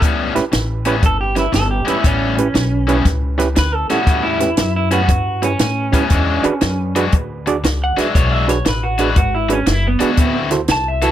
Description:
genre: electric blues shuffle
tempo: 118 BPM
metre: 4/4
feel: swing 66% on 8ths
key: A mixolydian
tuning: A4 = 440 Hz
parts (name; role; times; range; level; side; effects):
- cranked stack guitar; riff; 0.0-11.1 s; A2 to F#4; -21 LUFS; left 5 dB; overdrive
- upright bass; bass; 0.0-11.1 s; F#1 to A2; -20 LUFS; left 1 dB; none
- compact cocktail drum kit; drums; 0.0-11.1 s; hi-hat, kick drum, snare drum; -17 LUFS; equal; none
- overdriven reed electric piano; accompaniment; 0.4-11.1 s; C#4 to D5; -22 LUFS; right 5 dB; spring reverb
- electric guitar through a small old amp; melody; 1.1-11.1 s; B3 to A5; -20 LUFS; right 2 dB; none
room: little or no reverb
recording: none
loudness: -14 LUFS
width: side -11 dB against mid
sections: 0.0-11.1 A section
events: clean electric guitar solo 0.0-11.1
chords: 0.0 A9; 6.1 E9; 10.2 D9

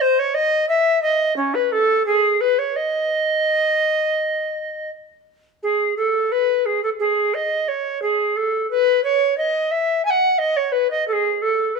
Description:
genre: classical, baroque-style fantasia for unaccompanied recorder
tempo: 87 BPM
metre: 4/4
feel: rubato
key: unclear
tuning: A4 = 439 Hz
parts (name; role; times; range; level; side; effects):
- tenor recorder; solo; 0.0-11.8 s; C#4 to G#5; -17 LUFS; equal; none
room: moderate recital hall reverb, RT60 1.4 s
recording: close, detailed microphones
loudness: -17 LUFS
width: side -4 dB against mid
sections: 0.0-5.6 A section; 5.6-11.8 B section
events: none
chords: none

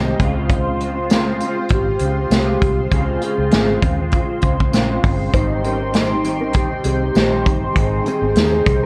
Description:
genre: indie pop, bedroom pop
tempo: 99 BPM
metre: 4/4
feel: swing 55% on 16ths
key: unclear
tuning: A4 = 440 Hz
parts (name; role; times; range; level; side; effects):
- warm velvety synth lead; melody; 0.0-8.9 s; Eb4 to Ab4; -25 LUFS; equal; lush chorus
- clean electric guitar; accompaniment; 0.0-8.9 s; Ab2 to F4; -26 LUFS; equal; ensemble chorus, vibrato effect
- phased analog pad; sustained chords; 0.0-8.9 s; F4 to C6; -29 LUFS; equal; phaser, chorus
- vintage muted fingered electric bass; bass; 0.0-8.9 s; G1 to Eb2; -25 LUFS; equal; none
- unplugged drum kit; drums; 0.2-8.8 s; hi-hat, kick drum, snare drum; -20 LUFS; equal; none
- tambourine; percussion; 1.1-8.5 s; none; -42 LUFS; equal; none
- mellow electric guitar; second line; 5.3-8.9 s; C4 to C5; -30 LUFS; equal; analog chorus, tape echo
room: moderate spring reverb, RT60 1.9 s, small room ambience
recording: worn, warbling old tape, cassette tape, warbly pitch drift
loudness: -18 LUFS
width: mono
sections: 0.0-8.9 A section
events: none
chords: 0.2 Dbmaj7; 5.3 Abmaj7

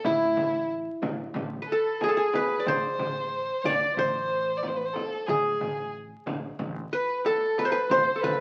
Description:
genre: Arabic maqam ensemble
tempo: 92 BPM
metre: 4/4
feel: straight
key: A maqam nahawand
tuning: A4 = 440 Hz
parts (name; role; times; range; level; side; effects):
- clear violin; second line; 0.0-8.4 s; E4 to D5; -33 LUFS; equal; none
- upright bass; bass; 0.0-8.4 s; A1 to A2; -44 LUFS; equal; none
- darbuka; percussion; 0.0-8.4 s; none; -44 LUFS; equal; none
- frame drum; percussion; 0.0-8.4 s; none; -37 LUFS; equal; none
- qanun; melody; 0.1-8.4 s; E4 to D5; -28 LUFS; equal; none
room: moderate studio reverb, RT60 0.8 s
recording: very old 78 rpm record, vinyl crackle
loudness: -27 LUFS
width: mono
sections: 0.0-8.4 A section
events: drum fill 7.2-7.9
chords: none

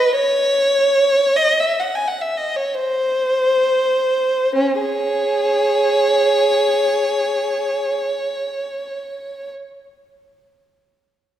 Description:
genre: classical, free, expressive piece for unaccompanied violin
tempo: 28-54 BPM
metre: 3/4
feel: rubato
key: C# minor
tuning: A4 = 439 Hz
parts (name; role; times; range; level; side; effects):
- warm violin; solo; 0.0-9.5 s; C#4 to G#5; -16 LUFS; equal; none
room: wet concert hall reverb, RT60 2.2 s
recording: recorded in a church or concert hall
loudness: -16 LUFS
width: side -11 dB against mid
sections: 0.0-4.6 A section; 4.6-9.4 B section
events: slowing down 0.0-4.6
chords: none

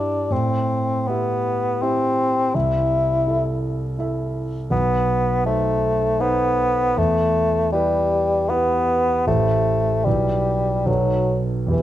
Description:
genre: classical, romantic duo for bassoon and grand piano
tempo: 69-84 BPM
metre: 3/4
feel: rubato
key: unclear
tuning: A4 = 440 Hz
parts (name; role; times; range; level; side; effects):
- mellow bassoon; melody; 0.0-11.8 s; E3 to E4; -20 LUFS; left 1 dB; none
- warm concert grand piano; accompaniment; 0.0-11.8 s; A1 to E5; -22 LUFS; right 2 dB; none
room: moderate recital hall reverb, RT60 1.5 s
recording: close, detailed microphones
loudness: -18 LUFS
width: side -13 dB against mid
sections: 0.0-11.8 A section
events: none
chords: 0.3 Am7; 2.5 Am/C; 4.7 B7b9; 7.0 Em; 9.3 Am7; 10.1 Em/B; 10.9 B7

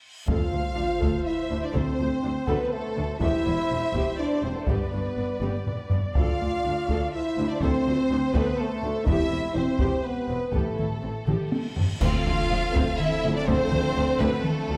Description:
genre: cinematic, epic orchestral film score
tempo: 123 BPM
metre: 3/4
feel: straight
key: unclear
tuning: A4 = 440 Hz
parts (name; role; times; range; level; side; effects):
- reverse cymbal, sub drop, cymbal swell and impact; sound effects; 0.0-1.7, 11.5-13.5 s; none; -39 LUFS; equal; none
- rich symphonic violin section; melody; 0.3-14.8 s; A4 to F5; -35 LUFS; equal; none
- clear studio violin section; second line; 0.3-14.8 s; A3 to F5; -38 LUFS; equal; none
- warm studio viola section; accompaniment; 0.3-14.8 s; F3 to D5; -36 LUFS; equal; none
- mellow French horn section; sustained chords; 0.3-14.8 s; F3 to F4; -31 LUFS; equal; none
- clear symphonic double bass section; bass; 0.3-14.8 s; E1 to D2; -35 LUFS; equal; none
- rich symphonic cello section; bass; 0.3-14.8 s; D2 to A2; -35 LUFS; equal; none
- taiko ensemble; drums; 0.3-14.7 s; none; -30 LUFS; equal; none
- timpani; percussion; 10.5-11.2 s; A2; -39 LUFS; equal; none
- warm trombone section; sustained chords; 12.0-14.8 s; D3 to A3; -39 LUFS; equal; none
- clash cymbals and concert bass drum; percussion; 12.0-12.9 s; none; -34 LUFS; equal; none
room: moderate scoring stage reverb, RT60 1.9 s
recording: none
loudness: -25 LUFS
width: mono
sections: 0.3-12.0 A section; 12.0-14.8 A section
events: break 0.0; drum fill 0.0, 5.4-6.2, 11.3-12.0; reverse cymbal 0.0; impact 0.3-1.8, 12.0-13.5; cymbal swell 11.5-12.0; band accent 12.0-12.5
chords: 0.3 Dm7; 3.2 C/E; 4.7 G; 6.2 Dm7; 9.1 C/E; 10.5 A7(no3); 12.0 Dm7

